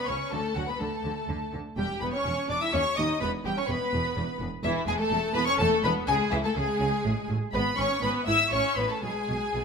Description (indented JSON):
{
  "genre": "quick classical-period movement for string orchestra",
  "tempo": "124 BPM",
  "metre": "3/4",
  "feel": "straight",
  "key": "E major from 4.6 s",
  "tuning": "A4 = 440 Hz",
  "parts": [
    { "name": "warm symphonic violin section", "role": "melody", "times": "0.0-9.6 s", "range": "E5 to E6", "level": "-30 LUFS", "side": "left 3 dB", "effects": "none" },
    { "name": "warm symphonic violin section", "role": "second line", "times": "0.0-9.6 s", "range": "E4 to E5", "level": "-30 LUFS", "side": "left 2 dB", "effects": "none" },
    { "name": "warm symphonic viola section", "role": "accompaniment", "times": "0.0-9.6 s", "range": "E3 to E4", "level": "-32 LUFS", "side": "equal", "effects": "none" },
    { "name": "rich studio double bass section", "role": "bass", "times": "0.1-9.6 s", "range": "E1 to D#2", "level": "-34 LUFS", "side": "right 3 dB", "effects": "none" },
    { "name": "rich symphonic cello section", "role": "bass", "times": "0.1-9.6 s", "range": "D#2 to D3", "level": "-34 LUFS", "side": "right 2 dB", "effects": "none" }
  ],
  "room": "moderate scoring stage reverb, RT60 1.6 s",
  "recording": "none",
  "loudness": "-25 LUFS",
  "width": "side -5 dB against mid",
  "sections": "0.0-9.6 A section",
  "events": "none",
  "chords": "0.3 D5; 1.8 Em6; 2.7 C#sus2/D#; 3.2 E5; 6.1 C#5; 7.0 N.C.; 7.5 E6/G#; 8.5 A; 9.0 G#m/B"
}